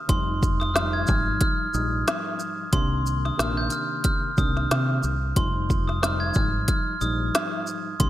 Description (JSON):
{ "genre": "hip hop, boom-bap hip-hop", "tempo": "91 BPM", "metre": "4/4", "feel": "swing 54% on 16ths", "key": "F dorian", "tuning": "A4 = 440 Hz", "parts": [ { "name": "glockenspiel with soft plastic mallets", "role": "melody", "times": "0.0-8.1 s", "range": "C6 to Ab6", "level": "-28 LUFS", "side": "equal", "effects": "high-pass filter, low-pass filter" }, { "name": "mellow tine electric piano", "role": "accompaniment", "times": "0.1-8.1 s", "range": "Ab2 to Eb4", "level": "-31 LUFS", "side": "left 1 dB", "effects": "medium stereo tremolo, cassette tape, high-pass filter, low-pass filter" }, { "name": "deep dub fingered electric bass", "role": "bass", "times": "0.1-8.1 s", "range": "F1 to C3", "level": "-26 LUFS", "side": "equal", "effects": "none" }, { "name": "organic electronic drum kit", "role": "drums", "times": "0.1-8.1 s", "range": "hi-hat, kick drum, shaker, snare drum", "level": "-25 LUFS", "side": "equal", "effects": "gated reverb" } ], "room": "light reverb, digital ambience", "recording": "bright 1980s-style digital production", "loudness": "-22 LUFS", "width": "side -14 dB against mid", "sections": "0.0-8.1 A section", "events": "none", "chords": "0.1 Fm9; 2.7 Cm9; 5.4 Fm9" }